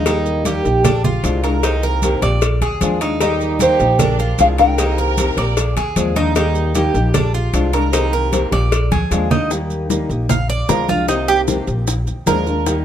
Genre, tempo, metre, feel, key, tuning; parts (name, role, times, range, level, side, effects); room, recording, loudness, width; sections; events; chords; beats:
latin, Cuban son and guajira; 152 BPM; 4/4; straight; A4 = 440 Hz
fingerpicked old ladder-braced acoustic guitar; accompaniment; 0.0-12.8 s; C3 to G4; -21 LUFS; left 3 dB
Cuban tres; arpeggios; 0.0-12.8 s; D4 to F5; -20 LUFS; right 5 dB
upright bass; bass; 0.0-12.8 s; Bb1 to Eb2; -19 LUFS; equal
congas; percussion; 0.1-12.8 s; -22 LUFS; right 1 dB
cowbell and bongos; percussion; 0.1-12.8 s; -24 LUFS; left 5 dB
maracas; percussion; 0.1-12.8 s; -29 LUFS; right 7 dB
nylon-string guitar; melody; 3.2-6.1 s; Bb4 to G5; -16 LUFS; left 2 dB
clear studio violin section; second line; 3.2-6.1 s; D4 to Bb4; -28 LUFS; right 3 dB; slapback echo
little or no reverb; close, detailed microphones; -14 LUFS; side -10 dB against mid
0.0-9.5 A section; 9.5-12.8 B section
drum fill 8.9-9.5; Cuban tres solo 9.5-12.8
0.1 Eb; 0.9 Bb7; 1.6 Cm7; 2.4 Bb7; 3.2 Eb; 4.0 Bb7; 4.8 Cm7; 5.6 Bb7; 6.4 Eb; 7.1 Bb7; 7.9 Cm7; 8.7 Bb7; 9.5 Eb; 10.3 Bb7; 11.1 Cm7; 11.9 Bb7
| 0.07 0.46 0.85 1.24 | 1.64 2.03 2.42 2.82 | 3.21 3.60 4.00 4.39 | 4.78 5.18 5.57 5.96 | 6.36 6.75 7.14 7.54 | 7.93 8.32 8.72 9.11 | 9.51 9.90 10.30 10.69 | 11.09 11.48 11.88 12.27 | 12.66